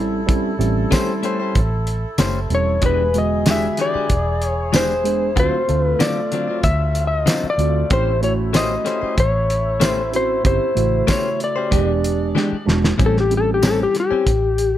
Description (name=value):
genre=straight-eighth soul blues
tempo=94 BPM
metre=4/4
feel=straight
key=unclear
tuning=A4 = 440 Hz
part: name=tine electric piano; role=accompaniment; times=0.0-14.3 s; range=C#3 to A4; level=-23 LUFS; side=right 4 dB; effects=wide subtle chorus
part: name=mellow horn section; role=sustained chords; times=0.0-13.0 s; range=F#3 to A4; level=-30 LUFS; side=right 1 dB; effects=none
part: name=vintage muted fingered electric bass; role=bass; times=0.0-14.8 s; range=E1 to D2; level=-22 LUFS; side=right 1 dB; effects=none
part: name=cloth-damped thuddy drum kit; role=drums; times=0.3-14.7 s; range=hi-hat, kick drum, snare drum, tambourine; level=-20 LUFS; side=equal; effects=none
part: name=direct-recorded clean electric guitar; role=stabs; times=0.9-14.3 s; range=A2 to B#4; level=-25 LUFS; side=left 5 dB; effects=none
part: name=electric slide guitar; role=melody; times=2.5-14.8 s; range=G4 to E5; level=-20 LUFS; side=left 3 dB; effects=none
room=light reverb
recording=none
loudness=-16 LUFS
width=side -12 dB against mid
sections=0.0-13.0 A section; 13.0-14.8 B section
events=drum fill 12.4-13.0; electric slide guitar solo 13.0-14.8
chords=0.0 A7#9; 2.8 E7#9; 5.4 D7#9; 7.9 A7#9; 11.7 E7#9; 13.0 A7#9